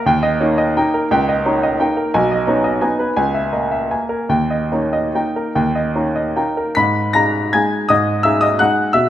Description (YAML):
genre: classical, piano waltz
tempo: 138-187 BPM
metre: 3/4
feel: rubato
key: G# minor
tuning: A4 = 440 Hz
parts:
  - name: clear grand piano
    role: solo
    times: 0.0-9.1 s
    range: B1 to B6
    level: -14 LUFS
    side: equal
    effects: none
room: moderate recital hall reverb, RT60 1.7 s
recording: none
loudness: -15 LUFS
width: side -12 dB against mid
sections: 0.0-6.8 A section; 6.8-9.1 B section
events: none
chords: 0.1 D#; 1.1 D#7/C#; 2.1 G#m/B; 3.2 A#m7b5/C#; 4.3 D#; 6.8 G#m